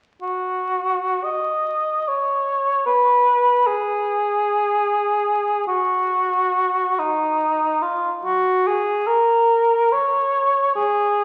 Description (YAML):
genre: classical, free, expressive piece for unaccompanied cor anglais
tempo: 47-80 BPM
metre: 3/4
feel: rubato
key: unclear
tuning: A4 = 439 Hz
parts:
  - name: mellow cor anglais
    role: solo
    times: 0.2-11.2 s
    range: Eb4 to Eb5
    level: -20 LUFS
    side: equal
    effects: none
room: wet recital hall reverb, RT60 1.6 s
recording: very old 78 rpm record, vinyl crackle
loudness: -20 LUFS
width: mono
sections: 0.2-5.7 A section; 5.7-11.2 B section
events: none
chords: none